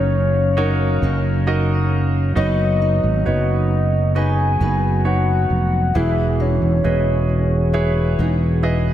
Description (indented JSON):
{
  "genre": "pop ballad",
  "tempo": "67 BPM",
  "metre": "4/4",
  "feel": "straight",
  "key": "unclear",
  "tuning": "A4 = 440 Hz",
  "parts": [
    { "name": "soft octave-layered synth lead", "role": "melody", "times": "0.0-8.9 s", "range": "C#5 to G#5", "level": "-23 LUFS", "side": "left 2 dB", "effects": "chorus, analog delay" },
    { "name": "warm concert grand piano", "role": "accompaniment", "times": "0.0-8.9 s", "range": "E3 to D#5", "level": "-26 LUFS", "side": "right 3 dB", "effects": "wide subtle chorus" },
    { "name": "mellow tonewheel organ", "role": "sustained chords", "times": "0.0-8.9 s", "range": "E3 to E#5", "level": "-25 LUFS", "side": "equal", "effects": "slow rotary speaker" },
    { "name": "nylon-string guitar", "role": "arpeggios", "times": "0.0-8.9 s", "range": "E3 to B4", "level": "-29 LUFS", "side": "left 1 dB", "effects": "analog chorus, analog delay" },
    { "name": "sustaining fretless electric bass", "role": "bass", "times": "0.0-8.9 s", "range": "E1 to G#1", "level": "-18 LUFS", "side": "equal", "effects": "ensemble chorus" }
  ],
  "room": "moderate lush hall reverb, RT60 2.9 s",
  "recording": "dreamy mix soaked in reverb",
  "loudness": "-16 LUFS",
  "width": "side -12 dB against mid",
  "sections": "0.0-8.9 A section",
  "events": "none",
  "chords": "0.0 D#m7/F#; 2.4 B/F#; 5.9 Emaj7"
}